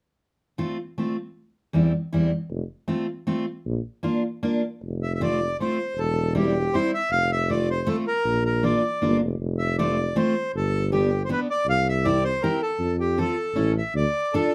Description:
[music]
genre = alpine folk, alpine dance band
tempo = 157 BPM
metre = 3/4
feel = straight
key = F major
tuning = A4 = 440 Hz
[part]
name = picked steel-string acoustic guitar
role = accompaniment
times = 0.6-14.5 s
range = E2 to A4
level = -26 LUFS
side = equal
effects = none
[part]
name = mellow tuba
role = bass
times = 2.5-14.1 s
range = E1 to F2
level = -28 LUFS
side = equal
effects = none
[part]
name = accordion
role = melody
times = 5.0-14.5 s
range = G4 to F5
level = -27 LUFS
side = equal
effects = none
[sound]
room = moderate small room reverb, RT60 0.5 s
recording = none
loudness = -25 LUFS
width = mono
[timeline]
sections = 0.2-4.8 A section; 4.8-13.9 B section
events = none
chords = 0.2 F; 1.4 C/E; 2.5 F; 3.7 Bb; 4.8 F; 6.0 C/E; 7.1 F; 8.2 Bb; 9.4 F; 10.5 G; 11.7 C; 12.8 F; 13.6 A; 13.9 Dm

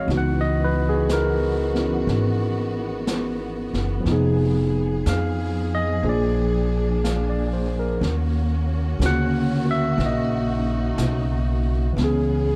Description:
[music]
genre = jazz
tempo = 61 BPM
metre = 4/4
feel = swing 68% on 8ths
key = unclear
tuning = A4 = 443 Hz
[part]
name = barky tine electric piano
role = accompaniment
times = 0.0-12.6 s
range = C#3 to F#5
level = -26 LUFS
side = equal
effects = overdrive
[part]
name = dark studio string section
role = sustained chords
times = 0.0-12.6 s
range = C#3 to Ab4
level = -33 LUFS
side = equal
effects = none
[part]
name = upright bass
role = bass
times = 0.0-12.6 s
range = F1 to F2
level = -26 LUFS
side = equal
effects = none
[part]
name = jazz brush drum kit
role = drums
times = 0.1-12.6 s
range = brushed snare drum, hi-hat, snare drum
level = -35 LUFS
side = equal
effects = none
[sound]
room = light reverb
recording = dark, warm production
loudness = -22 LUFS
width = mono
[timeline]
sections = 0.0-12.6 A section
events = none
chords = 0.1 C#m11; 4.1 Fm7b5; 6.0 A#7; 8.0 D#m7; 12.0 C#m7

